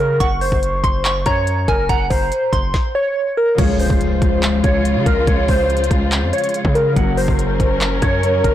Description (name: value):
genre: hip hop, trap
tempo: 142 BPM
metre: 4/4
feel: half-time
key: Db major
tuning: A4 = 440 Hz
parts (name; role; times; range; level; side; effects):
- glassy digital keys; melody; 0.0-8.5 s; Bb4 to Gb5; -19 LUFS; right 1 dB; chorus, low-pass filter, digital delay
- hard-hitting 808-style bass; bass; 0.0-8.5 s; Gb1 to Db3; -20 LUFS; equal; none
- soft synth bell; second line; 0.2-2.7 s; Ab5 to Db6; -23 LUFS; equal; chorus, phaser, digital delay
- trap drum kit; drums; 0.2-8.5 s; crash cymbal, handclaps, hi-hat, kick drum, rim click, snare drum; -20 LUFS; equal; none
- Celtic harp; accompaniment; 3.5-8.5 s; Db3 to Bb4; -23 LUFS; left 5 dB; low-pass filter
- dark symphonic string section; sustained chords; 3.6-8.5 s; Db3 to Bb4; -23 LUFS; left 1 dB; none
- impact; sound effects; 3.6-5.3 s; none; -27 LUFS; right 1 dB; none
room: digital ambience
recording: blown-out, overdriven recording, overdrive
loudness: -14 LUFS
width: side -12 dB against mid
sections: 0.0-3.6 A section; 3.6-8.5 B section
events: impact 3.6-5.3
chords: 0.2 Gb; 3.6 Db; 7.0 Gb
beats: | 0.20 0.63 1.05 1.47 | 1.90 2.32 2.74 3.16 | 3.58 4.01 4.43 4.85 | 5.28 5.70 6.12 6.54 | 6.96 7.39 7.81 8.23